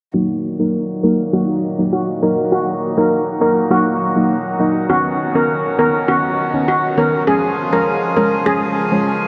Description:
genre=dancehall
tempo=101 BPM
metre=4/4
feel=straight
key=Eb minor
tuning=A4 = 440 Hz
part: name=steel pan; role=melody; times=0.1-8.9 s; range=Gb4 to Bb4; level=-20 LUFS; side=equal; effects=low-pass filter, analog delay
part: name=deep mellow chord stab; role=accompaniment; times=0.1-9.1 s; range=D#3 to Eb4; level=-21 LUFS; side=equal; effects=chorus, low-pass filter
part: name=hand-pumped harmonium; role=sustained chords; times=0.1-9.3 s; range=Bb2 to Ab4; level=-24 LUFS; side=equal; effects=low-pass filter
room=wet huge ambient reverb, RT60 7.1 s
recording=dreamy mix soaked in reverb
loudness=-17 LUFS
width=mono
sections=0.1-9.3 A section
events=filter sweep 0.1-9.3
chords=0.1 Ebm; 4.9 Badd9; 7.3 Db

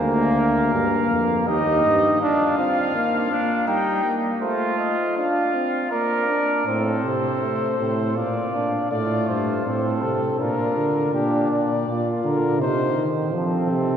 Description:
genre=classical, imitative canzona for brass ensemble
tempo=81 BPM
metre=3/4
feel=straight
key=unclear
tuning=A4 = 440 Hz
part: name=dark trumpet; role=melody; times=0.0-14.0 s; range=G4 to G5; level=-25 LUFS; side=left 3 dB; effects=none
part: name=mellow trumpet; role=second line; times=0.0-11.1 s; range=D4 to D5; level=-26 LUFS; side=right 3 dB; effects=none
part: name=clear trombone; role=accompaniment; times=0.0-14.0 s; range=G3 to F4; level=-24 LUFS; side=right 1 dB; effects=none
part: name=warm bass trombone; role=bass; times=0.0-2.2, 6.7-14.0 s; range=D2 to F3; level=-24 LUFS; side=right 1 dB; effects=none
room=wet cathedral reverb, RT60 4.2 s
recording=heard from further back in the room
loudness=-19 LUFS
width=side -8 dB against mid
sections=0.0-6.7 A section; 6.7-14.0 B section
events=none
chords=0.0 Bb/D; 1.5 Eb; 2.2 Bb; 3.7 Eb/G; 4.4 F/A; 5.9 Bb; 6.7 Am; 8.2 Bb; 8.9 F; 10.4 Bb; 11.1 Gm/Bb; 12.6 Cm; 13.4 F

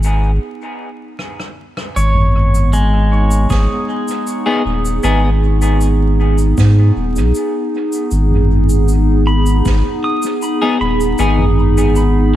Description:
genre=ambient dub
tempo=78 BPM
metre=4/4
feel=straight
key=G# minor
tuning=A4 = 439 Hz
part: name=warbly tape-like pad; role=sustained chords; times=0.0-12.4 s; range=B3 to G#4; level=-19 LUFS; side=right 1 dB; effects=chorus, built-in reverb
part: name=warm sub bass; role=bass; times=0.0-12.4 s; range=D#1 to G#2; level=-13 LUFS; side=equal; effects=none
part: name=soft-mallet drum kit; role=drums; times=0.0-12.1 s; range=cabasa, rim click, snare drum, toms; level=-24 LUFS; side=equal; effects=dub echo
part: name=pedal steel guitar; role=arpeggios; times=2.0-12.4 s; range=G#3 to D#6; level=-22 LUFS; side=equal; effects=tape echo
part: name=electronic kick drum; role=drums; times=3.5-9.8 s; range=none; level=-20 LUFS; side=equal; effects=none
part: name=clean electric guitar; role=stabs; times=4.5-5.3, 10.6-11.4 s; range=B3 to G#4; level=-21 LUFS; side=left 3 dB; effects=analog chorus, dub echo
room=light reverb, small room ambience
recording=vinyl crackle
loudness=-12 LUFS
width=side -12 dB against mid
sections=0.0-2.0 A section; 2.0-12.4 B section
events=break 0.4-2.0; drum fill 1.2-2.0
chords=0.0 G#m

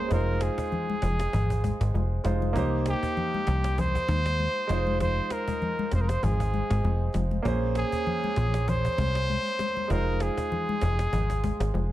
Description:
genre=afrobeats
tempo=98 BPM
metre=4/4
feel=swing 55% on 16ths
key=F minor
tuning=A4 = 439 Hz
part: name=breathy trumpet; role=melody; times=0.0-11.9 s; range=G4 to C5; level=-30 LUFS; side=equal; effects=ping-pong delay
part: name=clear grand piano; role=accompaniment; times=0.0-11.9 s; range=Ab3 to C5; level=-33 LUFS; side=right 3 dB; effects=none
part: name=plucky analog bass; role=bass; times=0.1-11.9 s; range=F1 to Eb2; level=-26 LUFS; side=equal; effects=none
part: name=cajon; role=drums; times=0.1-11.8 s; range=none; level=-37 LUFS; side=equal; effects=none
part: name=congas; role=percussion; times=0.1-11.9 s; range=none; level=-34 LUFS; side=left 4 dB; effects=none
room=small room ambience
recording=none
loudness=-24 LUFS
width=side -14 dB against mid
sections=0.0-11.9 A section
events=none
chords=0.1 Fm7; 2.6 Cm7; 4.7 Fm7; 7.5 Bbm9; 9.9 Fm7

